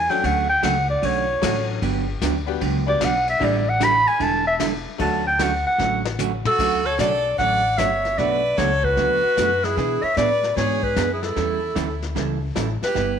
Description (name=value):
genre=country, western swing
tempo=151 BPM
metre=4/4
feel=swing 66% on 8ths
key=D major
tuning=A4 = 439 Hz
part: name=breathy clarinet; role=melody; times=0.0-13.2 s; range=G#4 to B5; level=-20 LUFS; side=equal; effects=slapback echo
part: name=upright bass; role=bass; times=0.0-13.2 s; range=E1 to B2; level=-27 LUFS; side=left 1 dB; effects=none
part: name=tack piano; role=accompaniment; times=0.1-5.2 s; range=F#3 to G4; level=-29 LUFS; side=left 12 dB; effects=none
part: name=vintage brush drum kit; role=drums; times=0.1-13.2 s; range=brushed snare drum, crash cymbal, hi-hat, kick drum, ride cymbal, snare drum, toms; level=-30 LUFS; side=left 8 dB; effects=none
part: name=vintage hollow-body jazz guitar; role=accompaniment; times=0.2-13.2 s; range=B2 to A4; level=-26 LUFS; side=right 11 dB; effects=none
part: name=rich fiddle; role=second line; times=6.5-13.2 s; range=E4 to D5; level=-29 LUFS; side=right 9 dB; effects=none
room=moderate echo chamber reverb, RT60 1.5 s, studio ambience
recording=1960s-style stereo with parts hard left and right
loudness=-18 LUFS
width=side -8 dB against mid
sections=0.0-6.6 A section; 6.6-13.2 B section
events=clarinet solo 0.0-6.6; drum fill 5.8-6.6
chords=0.2 Dmaj7; 1.8 Gmaj7; 3.4 A7sus4; 5.0 Dmaj7; 8.2 Bm7; 9.8 E7; 11.4 A7